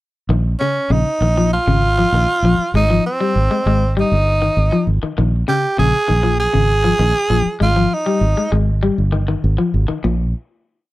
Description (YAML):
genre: afrobeat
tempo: 99 BPM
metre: 4/4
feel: straight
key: Bb dorian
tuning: A4 = 440 Hz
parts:
  - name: electric guitar at the edge of break-up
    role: arpeggios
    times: 0.3-10.2 s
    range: Bb2 to Ab3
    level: -20 LUFS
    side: left 4 dB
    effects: spring reverb
  - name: fingered electric bass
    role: bass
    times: 0.3-10.3 s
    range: G1 to Bb1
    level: -16 LUFS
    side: equal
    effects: none
  - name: raspy tenor saxophone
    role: melody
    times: 0.6-8.5 s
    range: C4 to Ab4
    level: -17 LUFS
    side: right 2 dB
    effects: none
room: light reverb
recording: dry, close 1970s-style studio recording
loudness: -14 LUFS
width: side -17 dB against mid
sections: 0.3-10.0 groove; 10.0-10.9 final chord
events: none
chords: 0.3 Bbm7; 2.7 Abmaj7; 5.2 Bbm7; 7.6 Ab5; 10.0 N.C.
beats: | 0.30 0.91 1.52 2.13 | 2.74 3.35 3.96 4.57 | 5.18 5.79 6.39 7.00 | 7.61 8.22 8.83 9.43 | 10.04